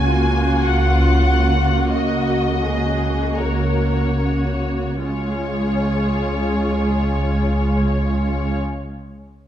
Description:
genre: classical, slow romantic movement for string orchestra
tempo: 34-50 BPM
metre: 4/4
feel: rubato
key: Db major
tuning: A4 = 440 Hz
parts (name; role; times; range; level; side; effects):
- rich symphonic violin section; melody; 0.0-8.6 s; Db5 to Ab5; -26 LUFS; left 2 dB; none
- warm symphonic violin section; second line; 0.0-8.6 s; F4 to Db5; -27 LUFS; left 3 dB; none
- warm studio viola section; accompaniment; 0.0-8.6 s; Ab3 to Gb4; -24 LUFS; right 2 dB; none
- dark symphonic cello section; bass; 0.0-8.6 s; Db2 to Db3; -23 LUFS; right 1 dB; none
- rich symphonic double bass section; bass; 0.0-8.6 s; Db2; -21 LUFS; equal; none
room: wet recital hall reverb, RT60 1.5 s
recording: heard from further back in the room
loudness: -17 LUFS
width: side -11 dB against mid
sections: 0.0-5.0 A section; 5.0-9.5 B section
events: slowing down 0.0-5.0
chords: 0.0 Gb/Db; 5.0 Db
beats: 0.65 1.93 3.39 | 5.05 6.60 8.19

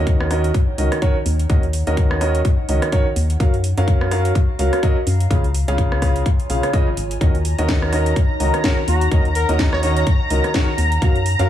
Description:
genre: piano house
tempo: 126 BPM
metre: 4/4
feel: swing 57% on 16ths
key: Eb minor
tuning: A4 = 439 Hz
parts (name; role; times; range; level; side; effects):
- warm concert grand piano; riff; 0.0-11.5 s; Db3 to F5; -22 LUFS; right 2 dB; sidechain pumping, digital delay
- organ-like FM bass; bass; 0.0-11.5 s; Ab1 to Gb2; -19 LUFS; left 1 dB; sidechain pumping
- warbly tape-like pad; texture; 0.1-11.5 s; Eb4 to Bb5; -32 LUFS; right 1 dB; none
- electronic kick drum; drums; 0.1-11.1 s; none; -18 LUFS; left 1 dB; none
- house drum kit; drums; 0.1-11.5 s; hi-hat, rim click, snare drum; -26 LUFS; left 1 dB; none
- analog string pad; sustained chords; 7.4-11.5 s; Bb5; -25 LUFS; left 2 dB; ensemble chorus, phaser, sidechain pumping
- trumpet with bucket mute; melody; 8.9-10.0 s; Gb4 to Db5; -25 LUFS; left 2 dB; digital delay
room: little or no reverb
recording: none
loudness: -16 LUFS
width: side -11 dB against mid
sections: 0.0-11.5 A section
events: none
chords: 0.0 Ebm7; 3.4 Gbmaj7; 5.3 Db; 7.2 Ebm7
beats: 0.07 0.54 1.02 | 1.50 1.97 2.45 2.92 | 3.40 3.88 4.35 4.83 | 5.31 5.78 6.26 6.74 | 7.21 7.69 8.16 8.64 | 9.12 9.59 10.07 10.54 | 11.02

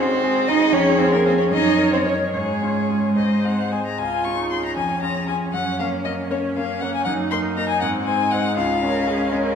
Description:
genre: quick classical-period movement for piano quartet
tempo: 71-81 BPM (dotted quarters)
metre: 6/8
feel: rubato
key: Db major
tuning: A4 = 439 Hz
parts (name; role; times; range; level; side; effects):
- rich violin; melody; 0.0-9.3 s; Ab4 to Db6; -24 LUFS; left 6 dB; none
- rich cello; second line; 0.0-9.6 s; Ab3 to Bb4; -23 LUFS; right 3 dB; none
- bright grand piano; accompaniment; 0.0-9.6 s; Db2 to Db5; -25 LUFS; left 1 dB; none
- rich viola; accompaniment; 0.0-9.6 s; C4 to Db5; -26 LUFS; right 2 dB; none
room: wet recital hall reverb, RT60 1.9 s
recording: heard from further back in the room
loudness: -18 LUFS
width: side -7 dB against mid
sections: 0.0-4.0 A section; 4.0-9.6 B section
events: none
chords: 0.0 Ab7/Eb; 0.7 Db/F; 1.5 Ebm7/Gb; 2.3 Db/Ab; 3.2 Ab; 4.0 Db; 4.8 Db/F; 5.5 Gb; 7.1 Ebm/Gb; 7.8 Ab; 8.6 Db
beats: | 0.74 1.51 | 2.33 3.16 | 3.98 4.76 | 5.53 6.30 | 7.06 7.82 | 8.57 9.33

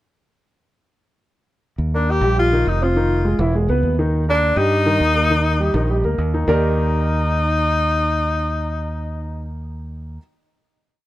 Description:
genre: Afro-Cuban jazz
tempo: 205 BPM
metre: 4/4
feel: straight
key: Eb major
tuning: A4 = 440 Hz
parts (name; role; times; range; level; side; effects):
- fingered electric bass; bass; 1.8-10.2 s; Fb1 to G2; -20 LUFS; equal; none
- clear tenor saxophone; melody; 1.9-9.6 s; D4 to G4; -20 LUFS; left 2 dB; none
- warm baby grand piano; accompaniment; 1.9-10.2 s; Eb3 to D5; -21 LUFS; equal; none
room: little or no reverb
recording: none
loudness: -16 LUFS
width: side -15 dB against mid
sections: 1.8-6.5 A section; 6.5-8.8 final chord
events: none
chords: 1.8 Eb; 3.0 Fm7; 3.5 E6; 4.1 Eb; 6.5 Ebmaj7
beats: | 1.79 2.08 2.38 2.67 | 2.96 3.25 3.55 3.84 | 4.13 4.43 4.72 5.01 | 5.31 5.60 5.90 6.19 | 6.48 6.78 7.07 7.36 | 7.66 7.95 8.24 8.54

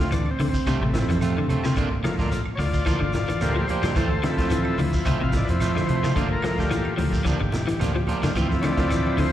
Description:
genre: afrobeat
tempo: 109 BPM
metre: 4/4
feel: swing 54% on 16ths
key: G dorian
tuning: A4 = 440 Hz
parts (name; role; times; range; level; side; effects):
- overdriven combo organ; accompaniment; 0.0-9.3 s; C3 to G5; -27 LUFS; left 1 dB; plate reverb, slapback echo
- electric guitar at the edge of break-up; stabs; 0.0-9.2 s; F3 to F4; -31 LUFS; right 6 dB; plate reverb, slapback echo
- vintage muted fingered electric bass; bass; 0.0-9.3 s; G1 to C3; -26 LUFS; right 1 dB; none
- congas; percussion; 0.0-9.3 s; none; -32 LUFS; right 1 dB; none
- shekere; percussion; 0.0-9.3 s; none; -33 LUFS; equal; none
- electric guitar at the edge of break-up; arpeggios; 0.1-9.3 s; C3 to F3; -27 LUFS; left 3 dB; ensemble chorus, tape echo, plate reverb
- vintage drum kit; drums; 0.1-9.3 s; hi-hat, kick drum, snare drum; -29 LUFS; equal; none
- claves; percussion; 0.3-9.2 s; none; -41 LUFS; right 3 dB; none
room: moderate club reverb, RT60 0.5 s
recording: live gig heard through the venue's PA, recital hall reverb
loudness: -21 LUFS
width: side -12 dB against mid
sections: 0.0-9.3 A section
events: transistor combo organ solo 0.0-9.3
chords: 0.0 Dm7; 1.8 Gm7; 4.0 Dm7; 6.2 Gm7; 8.4 Dm7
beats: 0.12 0.67 1.22 | 1.77 2.32 2.87 3.41 | 3.96 4.51 5.06 5.61 | 6.16 6.71 7.26 7.81 | 8.36 8.90

